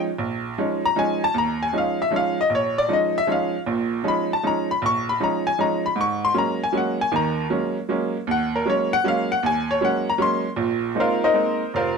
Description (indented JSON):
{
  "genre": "jazz",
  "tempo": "156 BPM",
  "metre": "3/4",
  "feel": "swing 66% on 8ths",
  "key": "Eb minor",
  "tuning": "A4 = 441 Hz",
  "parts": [
    { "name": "bright upright piano", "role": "solo", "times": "0.0-12.0 s", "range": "F1 to Db6", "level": "-20 LUFS", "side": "equal", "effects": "none" }
  ],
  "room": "moderate studio reverb, RT60 0.8 s",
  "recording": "dark, warm production",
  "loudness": "-20 LUFS",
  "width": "side -5 dB against mid",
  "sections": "0.0-1.4 A section; 1.4-10.6 A section; 10.6-12.0 A section",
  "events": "none",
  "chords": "0.0 Eb9sus4; 6.0 Ab9sus4; 10.6 Bb9sus4",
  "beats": "| 0.20 0.58 0.97 | 1.35 1.74 2.12 | 2.51 2.89 3.28 | 3.66 4.04 4.43 | 4.81 5.20 5.58 | 5.97 6.35 6.73 | 7.12 7.50 7.89 | 8.27 8.65 9.04 | 9.42 9.81 10.19 | 10.57 10.96 11.34 | 11.73"
}